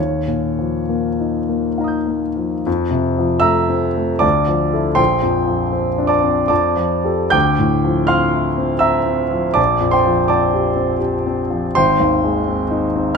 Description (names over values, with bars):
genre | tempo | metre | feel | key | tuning
classical, impressionist solo piano | 61-86 BPM | 3/4 | rubato | F mixolydian | A4 = 439 Hz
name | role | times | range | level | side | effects
warm concert grand piano | solo | 0.0-13.2 s | Ab1 to G6 | -15 LUFS | equal | none
room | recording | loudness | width
moderate recital hall reverb, RT60 1.4 s | close, detailed microphones | -15 LUFS | side -5 dB against mid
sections
0.0-2.7 A section; 2.7-13.2 A section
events
none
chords
0.0 Eb9; 2.7 Fmaj7; 4.2 Dmadd9; 5.0 Bbadd9; 6.5 F69; 7.3 Dm11; 9.6 Bb69; 11.7 Ab